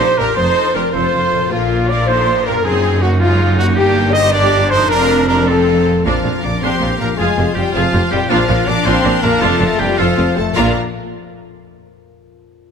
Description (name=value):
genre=cinematic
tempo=106 BPM (dotted quarters)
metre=6/8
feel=straight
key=Bb major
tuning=A4 = 440 Hz
part: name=warm symphonic violin section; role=melody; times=0.0-10.8 s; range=F4 to D6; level=-25 LUFS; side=left 3 dB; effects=none
part: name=bright clarinet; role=second line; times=0.0-10.7 s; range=C4 to A4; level=-25 LUFS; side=left 1 dB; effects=none
part: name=bright symphonic violin section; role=second line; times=0.0-10.8 s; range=Db4 to F5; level=-27 LUFS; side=left 1 dB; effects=none
part: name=clear oboe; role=second line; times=0.0-10.7 s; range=F4 to Eb5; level=-24 LUFS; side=right 2 dB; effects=none
part: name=flute section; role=second line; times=0.0-6.0, 10.6-10.8 s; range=D5 to Eb6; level=-25 LUFS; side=right 3 dB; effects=none
part: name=clear symphonic viola section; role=accompaniment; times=0.0-10.8 s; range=F3 to Bb4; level=-22 LUFS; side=right 2 dB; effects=none
part: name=dark French horn section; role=sustained chords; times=0.0-10.7 s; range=F3 to Eb5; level=-18 LUFS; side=left 3 dB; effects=none
part: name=concert harp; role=arpeggios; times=0.0-10.8 s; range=F2 to F5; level=-25 LUFS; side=left 8 dB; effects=none
part: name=warm trumpet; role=stabs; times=0.0-6.1 s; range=F4 to Eb5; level=-22 LUFS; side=right 3 dB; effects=none
part: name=clear studio double bass section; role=bass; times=0.0-10.8 s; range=F1 to Bb1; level=-20 LUFS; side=right 2 dB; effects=none
part: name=rich symphonic cello section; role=bass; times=0.0-10.8 s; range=F2 to Bb2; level=-20 LUFS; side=right 2 dB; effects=none
room=light reverb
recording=close, detailed microphones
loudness=-12 LUFS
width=side -6 dB against mid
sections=0.0-6.0 A section; 6.0-10.6 B section; 10.6-11.7 C section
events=none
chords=0.4 Bb/F; 0.9 F; 1.5 Bb; 2.6 Gb; 3.8 Gm; 4.9 Bb/F; 5.5 F; 6.0 Bb; 7.2 Fmadd9; 8.3 Bb; 9.4 Bb/F; 10.0 F; 10.6 Bb